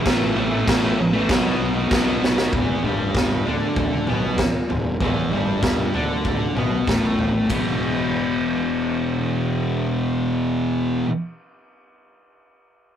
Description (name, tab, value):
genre	garage rock duo or trio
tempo	97 BPM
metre	4/4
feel	straight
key	unclear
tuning	A4 = 440 Hz
part	thick fuzz guitar	riff	0.0-11.1 s	E2 to D4	-22 LUFS	equal	distortion
part	fuzz fingered electric bass	bass	0.1-11.0 s	E1 to D2	-28 LUFS	equal	overdrive
part	raw garage drum kit	drums	0.1-7.6 s	crash cymbal, kick drum, ride cymbal, snare drum, toms	-22 LUFS	equal	none
room	light reverb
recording	rough rehearsal-room recording, warm saturation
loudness	-19 LUFS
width	side -9 dB against mid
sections	0.0-2.5 A section; 2.5-7.5 B section; 7.5-10.0 C section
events	drum fill 2.2-2.5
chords	0.1 A5; 1.3 B5; 2.5 E5